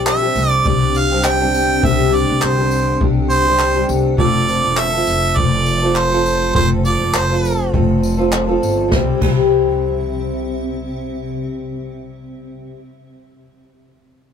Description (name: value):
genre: acoustic pop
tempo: 102 BPM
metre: 4/4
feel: swing 55% on 16ths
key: C major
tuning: A4 = 440 Hz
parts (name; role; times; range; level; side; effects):
- bright harmonica; melody; 0.0-7.7 s; C5 to G5; -17 LUFS; right 3 dB; none
- fingerpicked steel-string acoustic guitar; accompaniment; 0.0-12.8 s; C3 to A4; -20 LUFS; left 2 dB; none
- granular cloud pad; sustained chords; 0.0-12.0 s; C3 to E5; -26 LUFS; equal; built-in reverb
- upright bass; bass; 0.0-12.7 s; E1 to C2; -20 LUFS; equal; none
- jazz brush drum kit; drums; 0.1-9.4 s; crash cymbal, handclaps, kick drum, snare drum, tambourine; -20 LUFS; left 3 dB; none
room: light reverb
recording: rough rehearsal-room recording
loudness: -14 LUFS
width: side -7 dB against mid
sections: 0.0-8.9 A section; 8.9-11.3 B section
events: none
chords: 0.0 Csus2; 4.2 F; 8.9 C